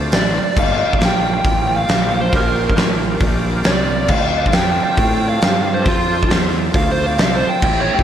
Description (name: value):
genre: blues rock power trio and southern rock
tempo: 136 BPM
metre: 4/4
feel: swing 67% on 8ths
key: D minor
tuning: A4 = 439 Hz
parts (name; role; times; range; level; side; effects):
- overdriven tonewheel organ; sustained chords; 0.0-8.0 s; A3 to D5; -25 LUFS; right 2 dB; chorus vibrato, slow rotary speaker
- fuzz fingered electric bass; bass; 0.0-8.0 s; G1 to A2; -21 LUFS; equal; overdrive
- biting lead guitar; second line; 0.1-8.0 s; F4 to G5; -19 LUFS; right 1 dB; overdrive, tape echo, slapback echo
- big rock drum kit; drums; 0.1-8.0 s; crash cymbal, hi-hat, kick drum, snare drum; -17 LUFS; equal; none
room: moderate lush hall reverb, RT60 2.1 s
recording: big arena sound, lossy compression artefacts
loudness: -14 LUFS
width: side -9 dB against mid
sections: 0.0-8.0 A section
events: lead electric guitar solo 0.0-8.0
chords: 0.0 Dm7; 0.6 Gm7; 4.1 Dm7